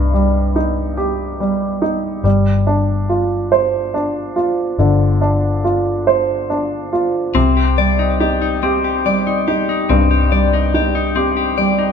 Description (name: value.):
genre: pop.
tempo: 47 BPM (dotted quarters).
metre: 6/8.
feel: straight.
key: C minor.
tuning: A4 = 440 Hz.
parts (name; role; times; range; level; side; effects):
warm upright piano; accompaniment; 0.0-11.9 s; G2 to C5; -17 LUFS; right 2 dB; none.
vintage muted fingered electric bass; bass; 0.0-11.9 s; G1 to C2; -18 LUFS; left 1 dB; none.
direct-recorded clean electric guitar; arpeggios; 7.3-11.9 s; C4 to D5; -17 LUFS; left 5 dB; spring reverb, tape echo.
room: light reverb.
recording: band playing live in one room.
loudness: -14 LUFS.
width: side -7 dB against mid.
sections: 0.0-11.9 A section.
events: none.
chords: 0.0 Cm; 2.2 G7sus4; 7.4 Cmadd9.